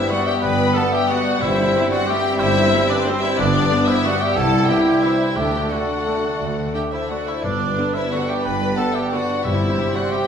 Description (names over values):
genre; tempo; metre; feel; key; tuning
classical, orchestral ballroom waltz; 180 BPM; 3/4; uneven beats, rubato; G major; A4 = 440 Hz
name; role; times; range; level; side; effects
rich chamber violin section; melody; 0.0-10.3 s; C5 to B5; -26 LUFS; left 4 dB; none
clear clarinet; second line; 0.0-10.3 s; B3 to G4; -26 LUFS; equal; none
mellow cor anglais; second line; 0.0-10.3 s; C4 to B4; -26 LUFS; right 2 dB; none
mellow hollow concert flute; second line; 0.0-10.3 s; G4 to G5; -26 LUFS; left 2 dB; none
rich chamber violin section; second line; 0.0-10.3 s; C4 to B4; -26 LUFS; left 2 dB; none
mellow bassoon; accompaniment; 0.0-10.3 s; G3 to C4; -29 LUFS; right 1 dB; none
bright trombone section; sustained chords; 0.0-10.3 s; G2 to A3; -30 LUFS; right 4 dB; none
mellow French horn section; sustained chords; 0.0-10.3 s; A3 to B4; -28 LUFS; left 1 dB; none
concert harp; arpeggios; 0.0-10.3 s; G2 to E6; -29 LUFS; left 4 dB; none
rich chamber viola section; accompaniment; 0.1-10.2 s; D3 to C4; -30 LUFS; equal; none
mellow tuba; bass; 0.4-9.7 s; G1 to D2; -29 LUFS; right 1 dB; none
rich chamber cello section; bass; 0.4-9.7 s; C2 to G2; -30 LUFS; right 2 dB; none
rich chamber double bass section; bass; 0.4-9.7 s; G1 to D2; -29 LUFS; right 2 dB; none
timpani; percussion; 1.4-1.9, 5.4-9.9 s; G2 to D3; -32 LUFS; left 2 dB; none
room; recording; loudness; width
wet recital hall reverb, RT60 1.4 s; recorded in a church or concert hall; -17 LUFS; side -7 dB against mid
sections
0.0-10.3 A section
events
none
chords
0.0 G; 1.4 C/G; 3.4 G; 4.4 C; 5.4 D; 7.4 G; 9.4 C/G